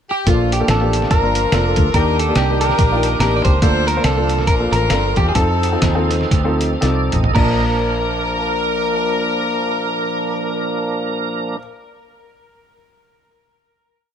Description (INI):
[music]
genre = uptempo gospel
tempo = 108-143 BPM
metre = 4/4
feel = swing 60% on 8ths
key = Bb major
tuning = A4 = 440 Hz
[part]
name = clean electric guitar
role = melody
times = 0.1-11.6 s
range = F4 to D5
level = -23 LUFS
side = right 1 dB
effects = tape echo
[part]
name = warm saxophone section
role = melody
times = 0.1-11.6 s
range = A3 to C5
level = -22 LUFS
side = left 4 dB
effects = tape echo
[part]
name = warm concert grand piano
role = accompaniment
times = 0.3-11.6 s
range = Bb1 to A5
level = -23 LUFS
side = equal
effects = none
[part]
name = tonewheel organ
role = sustained chords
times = 0.3-11.6 s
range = Eb3 to Eb5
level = -23 LUFS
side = right 3 dB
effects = fast rotary speaker, chorus vibrato
[part]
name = fingered electric bass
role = bass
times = 0.3-11.6 s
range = F1 to F2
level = -19 LUFS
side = equal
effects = none
[part]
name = lo-fi sampler-style drum kit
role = drums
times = 0.3-7.5 s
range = crash cymbal, hi-hat, kick drum, snare drum, toms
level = -19 LUFS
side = equal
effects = tape echo
[sound]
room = light reverb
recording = echo-heavy mix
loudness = -14 LUFS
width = side -8 dB against mid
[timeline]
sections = 0.0-0.3 pickup bar; 0.3-7.4 breakdown; 7.4-11.8 final chord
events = slowing down 3.6-7.4; drum fill 6.8-7.4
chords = 0.3 Bbmaj7; 1.9 Ebmaj7; 3.6 Bbmaj7; 5.4 F7; 7.4 Bbmaj7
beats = | 0.27 0.68 1.10 1.52 | 1.94 2.36 2.78 3.20 | 3.62 4.05 4.47 4.91 | 5.36 5.83 6.31 6.82 | 7.36 7.92 8.47 9.03 | 9.59 10.14 10.70 11.25